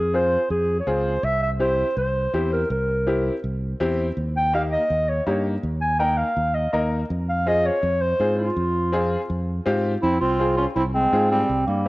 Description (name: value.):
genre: latin.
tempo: 164 BPM.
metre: 4/4.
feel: straight.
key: F minor.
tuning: A4 = 440 Hz.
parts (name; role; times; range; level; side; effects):
dark clarinet; melody; 0.0-11.9 s; Bb3 to Ab5; -22 LUFS; equal; cassette tape.
fingered electric bass; bass; 0.0-11.9 s; C2 to Ab2; -25 LUFS; equal; none.
clear upright piano; accompaniment; 0.1-11.9 s; Bb3 to Bb4; -26 LUFS; left 2 dB; cassette tape.
bright trombone; second line; 10.0-11.9 s; G3 to Db4; -26 LUFS; right 2 dB; cassette tape.
room: light reverb, small room ambience.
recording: home recording on cassette.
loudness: -20 LUFS.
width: side -20 dB against mid.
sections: 0.0-10.0 A section; 10.0-11.9 B section.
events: none.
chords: 0.0 Fm; 1.2 C7; 4.2 Eb; 7.1 Fm.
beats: 0.14 0.50 0.87 | 1.24 1.60 1.97 2.34 | 2.71 3.07 3.44 3.81 | 4.17 4.54 4.90 5.27 | 5.64 6.00 6.37 6.74 | 7.10 7.47 7.83 8.20 | 8.57 8.93 9.30 9.66 | 10.03 10.39 10.76 11.13 | 11.49 11.86.